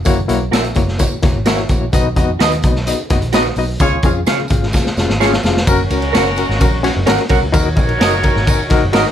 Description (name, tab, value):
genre	uptempo 1960s-style soul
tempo	128 BPM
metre	4/4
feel	straight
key	F# major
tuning	A4 = 440 Hz
part	barky reed electric piano	accompaniment	0.0-9.1 s	A#3 to A#5	-19 LUFS	left 4 dB	overdrive, medium tremolo
part	vintage muted picked electric bass	bass	0.1-9.0 s	E1 to C#3	-20 LUFS	equal	none
part	raw garage drum kit	drums	0.1-9.1 s	hi-hat, kick drum, ride cymbal, snare drum	-16 LUFS	equal	none
part	tambourine	percussion	0.1-9.1 s	none	-30 LUFS	right 2 dB	none
part	electric guitar through a small old amp	stabs	0.5-9.1 s	F#4 to F#5	-18 LUFS	right 6 dB	none
part	warm horn section	second line	3.8-9.1 s	C#4 to C#5	-21 LUFS	right 1 dB	none
room	light reverb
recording	none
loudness	-12 LUFS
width	side -10 dB against mid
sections	0.0-5.7 A section; 5.7-9.1 B section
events	band accent 3.8-5.7; drum fill 4.7-5.7; reed electric piano fill 8.0-9.1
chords	0.1 F#7; 1.9 B; 3.8 C#; 5.7 F#; 7.5 D#m